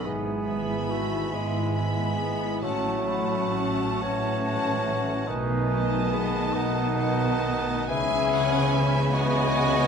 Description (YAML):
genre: classical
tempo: 46 BPM (dotted quarters)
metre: 6/8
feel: uneven beats, rubato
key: E major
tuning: A4 = 440 Hz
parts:
  - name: rich studio violin section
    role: melody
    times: 0.0-9.9 s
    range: G#5 to B5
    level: -34 LUFS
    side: left 2 dB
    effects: none
  - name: concert flute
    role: second line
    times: 0.0-9.9 s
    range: F#5 to B5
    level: -34 LUFS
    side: right 1 dB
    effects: none
  - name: dark clarinet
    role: second line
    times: 0.0-9.9 s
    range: E4 to E5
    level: -31 LUFS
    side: left 4 dB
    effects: none
  - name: mellow cor anglais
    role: second line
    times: 0.0-9.9 s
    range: G#3 to G#4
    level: -34 LUFS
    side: right 4 dB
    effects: none
  - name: rich studio violin section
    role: second line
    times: 0.0-9.9 s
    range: D#5 to G#5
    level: -38 LUFS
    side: left 3 dB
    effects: none
  - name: mellow bassoon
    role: accompaniment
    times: 0.0-9.9 s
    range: D#3 to G#3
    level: -34 LUFS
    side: right 2 dB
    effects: none
  - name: warm studio viola section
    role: accompaniment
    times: 0.0-9.9 s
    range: B3 to C#4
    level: -34 LUFS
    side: right 3 dB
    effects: none
  - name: mellow French horn section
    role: sustained chords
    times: 0.0-9.9 s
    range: G#3 to E4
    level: -35 LUFS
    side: left 3 dB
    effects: none
  - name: concert harp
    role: arpeggios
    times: 0.0-9.9 s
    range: G#2 to B5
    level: -32 LUFS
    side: left 8 dB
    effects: none
  - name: clear studio double bass section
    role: bass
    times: 0.0-9.9 s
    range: G#1 to C#2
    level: -32 LUFS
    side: right 4 dB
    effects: none
  - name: warm studio cello section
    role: bass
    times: 0.0-9.9 s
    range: G#2 to C#3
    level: -31 LUFS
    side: right 3 dB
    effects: none
room: wet recital hall reverb, RT60 1.5 s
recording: minimal, uncompressed stereo recording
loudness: -23 LUFS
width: side -6 dB against mid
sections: 0.0-9.9 A section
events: none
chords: 0.0 E/G#; 2.6 F#m/A; 5.3 B7; 7.9 C#m7